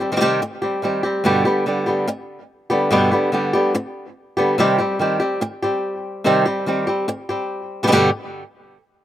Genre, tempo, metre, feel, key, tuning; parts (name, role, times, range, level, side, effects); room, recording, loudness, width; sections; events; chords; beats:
flamenco; 144 BPM; 4/4; straight; G major; A4 = 440 Hz
flamenco guitar; melody; 0.0-8.1 s; G2 to G4; -17 LUFS; equal; slapback echo
little or no reverb; recorded outdoors, with no room sound; -17 LUFS; side -12 dB against mid
0.0-1.2 A section; 1.2-7.9 A section; 7.9-9.0 B section
0.0 Cm; 1.2 G; 4.6 Cm; 7.9 G
0.00 0.42 0.83 | 1.25 1.67 2.08 2.50 | 2.92 3.33 3.75 4.17 | 4.58 5.00 5.42 5.83 | 6.25 6.67 7.09 7.50 | 7.92